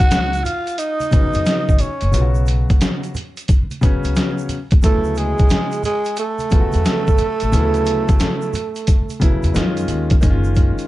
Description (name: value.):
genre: hip hop, jazz-hop.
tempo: 89 BPM.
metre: 4/4.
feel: swing 65% on 16ths.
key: unclear.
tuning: A4 = 440 Hz.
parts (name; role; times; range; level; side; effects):
breathy flugelhorn; melody; 0.0-9.5 s; G#4 to F#5; -23 LUFS; right 1 dB; none.
growling tenor saxophone; second line; 0.0-9.5 s; G#3 to F#4; -25 LUFS; right 6 dB; none.
warm grand piano; accompaniment; 0.0-10.9 s; C#3 to F#4; -23 LUFS; left 2 dB; none.
trip hop sampler-style drum kit; drums; 0.0-10.9 s; hi-hat, kick drum, snare drum; -16 LUFS; equal; overdrive.
egg shaker and congas; percussion; 0.0-10.9 s; none; -32 LUFS; right 3 dB; none.
upright bass; bass; 0.1-10.7 s; F#1 to F#2; -19 LUFS; equal; none.
room: little or no reverb.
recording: dark, warm production, nothing above 10.7 kHz.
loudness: -15 LUFS.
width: side -16 dB against mid.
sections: 0.0-10.2 A section.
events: none.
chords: 0.0 Badd9; 4.8 D6; 9.6 F#5; 10.2 F#sus2.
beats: 0.12 0.79 1.47 | 2.14 2.81 3.49 4.16 | 4.84 5.51 6.19 6.86 | 7.53 8.21 8.88 9.56 | 10.23.